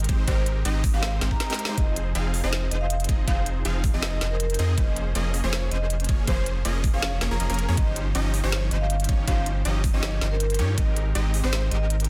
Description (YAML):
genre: future bass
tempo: 160 BPM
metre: 4/4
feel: half-time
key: Ab major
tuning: A4 = 440 Hz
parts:
  - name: supersaw stab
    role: riff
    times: 0.0-12.1 s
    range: F3 to F5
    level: -33 LUFS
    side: equal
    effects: sidechain pumping
  - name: saturated sub bass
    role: bass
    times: 0.0-12.1 s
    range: F1 to G2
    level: -28 LUFS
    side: equal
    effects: sidechain pumping
  - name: trap drum kit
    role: drums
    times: 0.0-12.1 s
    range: hi-hat, snare drum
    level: -33 LUFS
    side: equal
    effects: studio reverb
  - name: electronic kick drum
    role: drums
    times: 0.1-10.9 s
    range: none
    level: -26 LUFS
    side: equal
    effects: studio reverb
  - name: vibraphone with medium hard mallets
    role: melody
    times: 0.3-11.8 s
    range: Bb4 to Bb5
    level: -36 LUFS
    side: equal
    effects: sidechain pumping, dub echo
room: digital ambience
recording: dense, heavily limited modern master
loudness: -24 LUFS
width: mono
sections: 0.0-12.1 A section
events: drum fill 1.4-1.8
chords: 0.0 Abmaj9; 1.8 Fm7; 4.8 Bbm9/F; 7.8 Eb13/G; 10.8 Abmaj9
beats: | 0.28 0.65 1.03 1.40 | 1.78 2.15 2.53 2.90 | 3.28 3.65 4.03 4.40 | 4.78 5.15 5.53 5.90 | 6.28 6.65 7.03 7.40 | 7.78 8.15 8.53 8.90 | 9.28 9.65 10.03 10.40 | 10.78 11.15 11.53 11.90